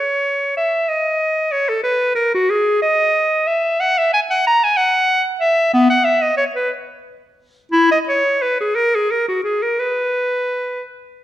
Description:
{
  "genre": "classical, baroque-style fantasia for unaccompanied clarinet",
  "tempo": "57-64 BPM (dotted quarters)",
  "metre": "6/8",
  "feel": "rubato",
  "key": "B major from 3.8 s",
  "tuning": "A4 = 443 Hz",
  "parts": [
    { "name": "bright clarinet", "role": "solo", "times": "0.0-10.8 s", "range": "B3 to A#5", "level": "-15 LUFS", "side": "equal", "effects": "none" }
  ],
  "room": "moderate recital hall reverb, RT60 1.6 s",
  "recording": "none",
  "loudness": "-15 LUFS",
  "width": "side -13 dB against mid",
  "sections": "0.0-11.2 A section",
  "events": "none",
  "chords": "none"
}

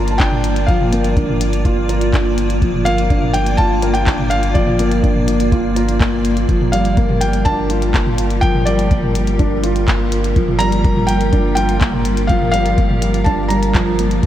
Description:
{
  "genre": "piano and strings electronica",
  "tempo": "124 BPM",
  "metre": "4/4",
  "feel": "straight",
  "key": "G minor",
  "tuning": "A4 = 440 Hz",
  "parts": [
    { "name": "felt-muted upright piano", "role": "melody", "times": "0.0-13.9 s", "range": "D5 to Bb5", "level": "-22 LUFS", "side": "equal", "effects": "analog delay" },
    { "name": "granular cloud pad", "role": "sustained chords", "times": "0.0-14.3 s", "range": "G3 to D5", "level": "-22 LUFS", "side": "equal", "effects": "built-in reverb" },
    { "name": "dark concert grand piano", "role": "riff", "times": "0.0-14.3 s", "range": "F3 to Bb4", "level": "-20 LUFS", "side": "equal", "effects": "wide subtle chorus, analog delay" },
    { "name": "warm sub bass", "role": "bass", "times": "0.0-14.3 s", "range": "G1", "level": "-20 LUFS", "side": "equal", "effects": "sidechain pumping" },
    { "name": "minimal click drum kit", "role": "drums", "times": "0.1-14.3 s", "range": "handclaps, hi-hat, toms", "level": "-24 LUFS", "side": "equal", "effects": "studio reverb" },
    { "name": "electronic kick drum", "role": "drums", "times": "0.2-14.3 s", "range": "none", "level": "-17 LUFS", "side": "equal", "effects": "studio reverb" }
  ],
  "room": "moderate huge ambient reverb, RT60 7.7 s",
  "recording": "dreamy mix soaked in reverb",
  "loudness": "-13 LUFS",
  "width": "side -12 dB against mid",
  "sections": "0.0-14.3 A section",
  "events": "none",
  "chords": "0.0 Gm7"
}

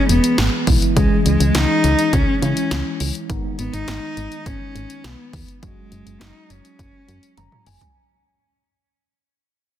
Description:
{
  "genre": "synth-pop",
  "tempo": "103 BPM",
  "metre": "4/4",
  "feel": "straight",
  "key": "unclear",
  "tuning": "A4 = 440 Hz",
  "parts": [
    { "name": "dark cello", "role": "melody", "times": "0.0-7.7 s", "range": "G#3 to D#4", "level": "-21 LUFS", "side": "left 2 dB", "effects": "none" },
    { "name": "mellow tine electric piano", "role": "accompaniment", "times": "0.0-7.9 s", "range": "D#3 to A#5", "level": "-25 LUFS", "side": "right 1 dB", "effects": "medium stereo tremolo" },
    { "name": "solid FM bass", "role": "bass", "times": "0.1-7.8 s", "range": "E1 to C#3", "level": "-20 LUFS", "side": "equal", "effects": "none" },
    { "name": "punchy analog drum machine", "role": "drums", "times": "0.1-7.9 s", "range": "hi-hat, kick drum, snare drum, toms", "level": "-21 LUFS", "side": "equal", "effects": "none" }
  ],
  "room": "light reverb",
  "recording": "dense, heavily limited modern master",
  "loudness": "-16 LUFS",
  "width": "side -11 dB against mid",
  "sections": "0.0-8.0 A section",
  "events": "fade-out 0.0-8.0; tine electric piano fill 7.1-8.0; drum fill 7.4-8.0",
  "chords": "0.0 E; 1.0 C#m; 3.3 G#m; 5.6 F#sus2"
}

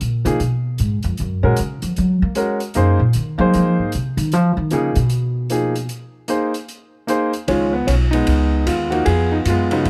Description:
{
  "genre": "jazz piano trio",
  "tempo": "153 BPM",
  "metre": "4/4",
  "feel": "swing 64% on 8ths",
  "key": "Db mixolydian",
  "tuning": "A4 = 440 Hz",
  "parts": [
    { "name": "upright bass", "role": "bass", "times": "0.0-9.9 s", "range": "Cb2 to Bb3", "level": "-20 LUFS", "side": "equal", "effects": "none" },
    { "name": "open jazz drum kit", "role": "drums", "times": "0.0-9.9 s", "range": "hi-hat, kick drum, ride cymbal", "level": "-33 LUFS", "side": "equal", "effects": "none" },
    { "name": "warm concert grand piano", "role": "melody", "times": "0.2-9.9 s", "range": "Db3 to C5", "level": "-21 LUFS", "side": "equal", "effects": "none" }
  ],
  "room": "little or no reverb",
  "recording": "close, detailed microphones",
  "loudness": "-18 LUFS",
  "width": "mono",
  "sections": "0.0-7.5 A section; 7.5-9.9 B section",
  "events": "upright bass solo 0.0-7.5",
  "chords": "0.0 Db7; 1.2 Gbadd9; 2.8 Ab9; 4.3 Db9; 5.9 Abadd9; 7.5 Db9"
}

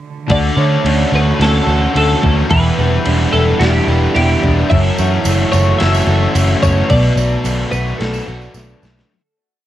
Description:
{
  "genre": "rock, shoegaze and dream pop",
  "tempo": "109 BPM",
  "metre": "4/4",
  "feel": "straight",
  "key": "D major",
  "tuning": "A4 = 439 Hz",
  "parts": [
    { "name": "twelve-string electric guitar", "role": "melody", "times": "0.3-8.8 s", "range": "G4 to E5", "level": "-19 LUFS", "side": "equal", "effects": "analog chorus, cassette tape, analog delay" },
    { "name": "pedal harmonium", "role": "sustained chords", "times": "0.3-9.1 s", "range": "F#4 to B5", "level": "-24 LUFS", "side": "equal", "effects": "cassette tape" },
    { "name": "picked twelve-string acoustic guitar", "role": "arpeggios", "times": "0.3-9.1 s", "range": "E3 to G4", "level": "-25 LUFS", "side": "right 3 dB", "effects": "wide subtle chorus, cassette tape, analog delay" },
    { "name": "overdriven semi-hollow guitar", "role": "riff", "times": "0.3-9.1 s", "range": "F#2 to B4", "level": "-22 LUFS", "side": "right 7 dB", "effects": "reverse reverb, cassette tape" },
    { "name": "thick fuzz guitar", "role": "riff", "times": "0.3-9.1 s", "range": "E2 to F#4", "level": "-20 LUFS", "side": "left 8 dB", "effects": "distortion, analog chorus, cassette tape" },
    { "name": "vintage muted picked electric bass", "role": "bass", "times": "0.3-9.0 s", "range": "E1 to D3", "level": "-15 LUFS", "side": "equal", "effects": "none" },
    { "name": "gated 80s digital drum machine", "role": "drums", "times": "0.3-9.1 s", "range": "crash cymbal, kick drum, snare drum", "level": "-21 LUFS", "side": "equal", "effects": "gated reverb, gated reverb snare, cassette tape" },
    { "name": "tambourine", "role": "percussion", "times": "5.0-9.0 s", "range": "none", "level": "-32 LUFS", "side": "right 11 dB", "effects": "none" }
  ],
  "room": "light reverb",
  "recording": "home recording on cassette",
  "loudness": "-11 LUFS",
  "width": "side -12 dB against mid",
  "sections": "0.3-9.1 verse",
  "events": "fade-out 6.9-9.1; drum fill 8.6-9.1",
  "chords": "0.3 Dmaj7; 2.5 Em7; 4.7 F#m7; 6.9 Bm7"
}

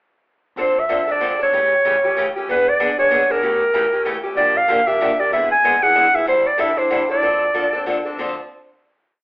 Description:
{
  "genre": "acoustic string swing (jazz manouche)",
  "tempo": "189 BPM",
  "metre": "3/4",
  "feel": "swing 59% on 8ths",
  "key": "D minor",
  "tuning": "A4 = 440 Hz",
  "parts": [
    { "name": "mellow clarinet", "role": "melody", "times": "0.6-7.8 s", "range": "Bb4 to G#5", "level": "-15 LUFS", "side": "equal", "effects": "none" },
    { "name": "picked steel-string acoustic guitar", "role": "accompaniment", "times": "0.6-8.3 s", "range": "C#3 to A4", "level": "-22 LUFS", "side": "left 1 dB", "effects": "none" },
    { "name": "upright bass", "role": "bass", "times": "0.6-8.3 s", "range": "E1 to D2", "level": "-45 LUFS", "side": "equal", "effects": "none" }
  ],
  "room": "moderate large studio reverb, RT60 0.7 s",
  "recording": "band playing live in one room, telephone sound",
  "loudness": "-15 LUFS",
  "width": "side -24 dB against mid",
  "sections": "0.6-8.2 A section; 8.2-9.1 final chord",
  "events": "none",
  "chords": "0.6 Dm7; 1.5 A7; 2.5 E7; 3.4 A7b9; 4.4 Bb6; 5.3 E7/G#; 6.3 A7sus4; 7.2 Dm7"
}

